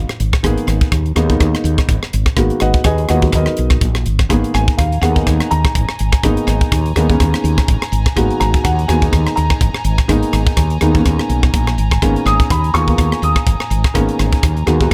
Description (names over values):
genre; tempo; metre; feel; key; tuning
electric jazz fusion; 124 BPM; 4/4; swing 56% on 16ths; G# minor; A4 = 440 Hz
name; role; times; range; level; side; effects
dark grand piano; accompaniment; 0.0-14.9 s; D#3 to D#6; -20 LUFS; equal; plate reverb
woody fretless electric bass; bass; 0.0-14.9 s; G#1 to D#2; -19 LUFS; equal; subtle chorus
crisp fusion drum kit; drums; 0.1-14.9 s; hi-hat, kick drum, rim click; -19 LUFS; equal; none
airy breathy pad; sustained chords; 4.3-14.9 s; G#5 to A#5; -29 LUFS; equal; chorus, plate reverb
room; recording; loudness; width
light reverb; none; -15 LUFS; mono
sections
0.0-14.9 A section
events
none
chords
0.0 G#m9